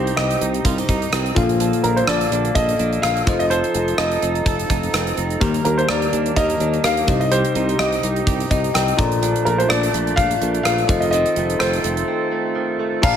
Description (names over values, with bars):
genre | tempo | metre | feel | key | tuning
1980s-style pop | 126 BPM | 4/4 | swing 55% on 16ths | unclear | A4 = 438 Hz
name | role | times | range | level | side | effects
warm baby grand piano | melody | 0.0-13.2 s | Bb4 to F5 | -22 LUFS | left 1 dB | tape echo
bell-like tine electric piano | accompaniment | 0.0-13.2 s | Bb2 to Bb5 | -23 LUFS | left 4 dB | none
warm woodwind section | sustained chords | 0.0-13.2 s | Bb2 to A4 | -28 LUFS | right 1 dB | none
direct-recorded clean electric guitar | riff | 0.0-13.2 s | Eb3 to Bb4 | -26 LUFS | right 7 dB | analog chorus
sustaining fretless electric bass | bass | 0.0-13.2 s | F1 to Eb2 | -24 LUFS | equal | analog chorus
gated 80s drum kit | drums | 0.1-13.2 s | crash cymbal, hi-hat, kick drum, rim click | -22 LUFS | right 1 dB | gated reverb
room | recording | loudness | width
light reverb | none | -16 LUFS | side -9 dB against mid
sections
0.0-13.0 A section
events
tine electric piano fill 8.3-9.2; break 12.1-13.0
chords
0.0 Cm; 1.4 Bbmaj7; 3.3 F7; 5.4 Ebmaj7; 7.1 Cm; 9.0 Bbmaj7; 10.9 F7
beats
0.18 0.65 1.13 | 1.60 2.08 2.56 3.03 | 3.51 3.99 4.46 4.94 | 5.41 5.89 6.37 6.84 | 7.32 7.79 8.27 8.75 | 9.22 9.70 10.18 10.65 | 11.13 11.61 12.08 12.56 | 13.03